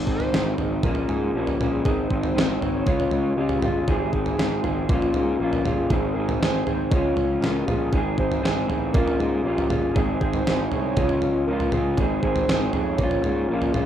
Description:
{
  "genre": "indie rock",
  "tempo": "118 BPM",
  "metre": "4/4",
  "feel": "straight",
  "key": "Ab major",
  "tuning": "A4 = 439 Hz",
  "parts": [
    { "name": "hollow square lead", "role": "melody", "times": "0.0-13.9 s", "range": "F4 to Db5", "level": "-30 LUFS", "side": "right 2 dB", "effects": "chorus, slapback echo" },
    { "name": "electric guitar through a small old amp", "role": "riff", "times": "0.0-13.9 s", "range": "Eb3 to Ab4", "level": "-24 LUFS", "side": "left 1 dB", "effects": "spring reverb" },
    { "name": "fuzz picked electric bass", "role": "bass", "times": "0.0-13.9 s", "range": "G1 to Ab2", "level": "-28 LUFS", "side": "equal", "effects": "overdrive" },
    { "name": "gated 80s digital drum machine", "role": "drums", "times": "0.1-13.9 s", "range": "kick drum, snare drum, toms", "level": "-25 LUFS", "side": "right 1 dB", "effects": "gated reverb, gated reverb snare, overdrive" }
  ],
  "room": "digital ambience",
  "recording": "rough home demo mix",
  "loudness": "-20 LUFS",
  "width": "side -10 dB against mid",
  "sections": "0.0-13.9 A section",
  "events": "none",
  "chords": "0.0 Ab; 0.8 Bbm; 1.9 Ab; 2.9 Db; 3.9 Ab; 4.9 Bbm; 5.9 Ab; 6.9 Db; 7.9 Ab; 8.9 Bbm; 10.0 Ab; 11.0 Db; 12.0 Ab; 13.0 Bbm",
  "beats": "0.33 0.84 1.34 | 1.85 2.36 2.86 3.37 | 3.88 4.38 4.89 5.40 | 5.91 6.41 6.92 7.43 | 7.93 8.44 8.95 9.45 | 9.96 10.46 10.97 11.48 | 11.98 12.48 12.99 13.49"
}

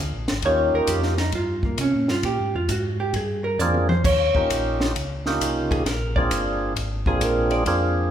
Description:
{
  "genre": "soul jazz organ trio",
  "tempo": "133 BPM",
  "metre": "4/4",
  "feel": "swing 67% on 8ths",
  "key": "unclear",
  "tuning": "A4 = 438 Hz",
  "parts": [
    { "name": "mellow tonewheel organ", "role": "bass", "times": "0.0-8.1 s", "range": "G1 to C3", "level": "-26 LUFS", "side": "equal", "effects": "slow rotary speaker" },
    { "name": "compact cocktail drum kit", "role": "drums", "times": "0.3-7.8 s", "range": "crash cymbal, hi-hat, kick drum, ride cymbal, snare drum, toms", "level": "-26 LUFS", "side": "equal", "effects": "none" },
    { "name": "percussive tonewheel organ", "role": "melody", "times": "0.4-8.1 s", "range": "Bb3 to Ab4", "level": "-25 LUFS", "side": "right 1 dB", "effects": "slow rotary speaker" },
    { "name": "vintage hollow-body jazz guitar", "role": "accompaniment", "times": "0.5-7.9 s", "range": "Bb3 to D5", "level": "-24 LUFS", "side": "right 1 dB", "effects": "none" }
  ],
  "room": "wet recital hall reverb, RT60 1.5 s",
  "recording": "recorded in a church or concert hall",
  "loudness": "-20 LUFS",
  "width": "side -10 dB against mid",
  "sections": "0.0-8.1 A section",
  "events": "hollow-body jazz guitar solo 0.0-8.1; drum fill 3.6-4.1",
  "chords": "0.4 Eb7; 2.2 Bb7; 4.1 Eb7; 5.9 Bb7",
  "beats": "| 0.44 0.90 1.35 1.80 | 2.25 2.70 3.15 3.60 | 4.05 4.51 4.96 5.41 | 5.86 6.31 6.76 7.21 | 7.67"
}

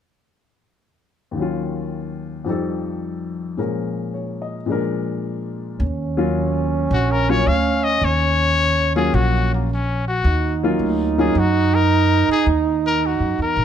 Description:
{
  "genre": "jazz, small-group swing and bop",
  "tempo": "108 BPM",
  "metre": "4/4",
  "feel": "swing 67% on 8ths",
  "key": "Eb minor",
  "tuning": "A4 = 440 Hz",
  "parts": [
    { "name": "warm baby grand piano", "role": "accompaniment", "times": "1.3-11.3 s", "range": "Eb2 to Eb5", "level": "-22 LUFS", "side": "left 3 dB", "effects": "none" },
    { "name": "mellow trombone", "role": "second line", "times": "5.8-13.6 s", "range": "Db4 to Eb4", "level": "-22 LUFS", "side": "right 8 dB", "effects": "none" },
    { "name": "upright bass", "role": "bass", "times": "5.8-13.6 s", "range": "Bb1 to Gb2", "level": "-20 LUFS", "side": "equal", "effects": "none" },
    { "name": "brilliant trumpet", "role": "melody", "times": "6.9-13.6 s", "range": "Bb3 to F5", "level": "-21 LUFS", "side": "left 5 dB", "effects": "plate reverb" }
  ],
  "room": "moderate club reverb, RT60 0.7 s",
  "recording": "none",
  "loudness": "-17 LUFS",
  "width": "side -9 dB against mid",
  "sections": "1.4-5.8 A section; 5.8-13.6 B section",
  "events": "none",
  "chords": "1.4 Ebm7; 2.5 F7; 3.6 Bbm7; 4.7 Bb7; 5.8 Ebm7",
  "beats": "| 1.35 1.91 2.46 3.02 | 3.57 4.13 4.68 5.24 | 5.79 6.35 6.91 7.46 | 8.02 8.57 9.13 9.69 | 10.24 10.80 11.35 11.91 | 12.46 13.02 13.57"
}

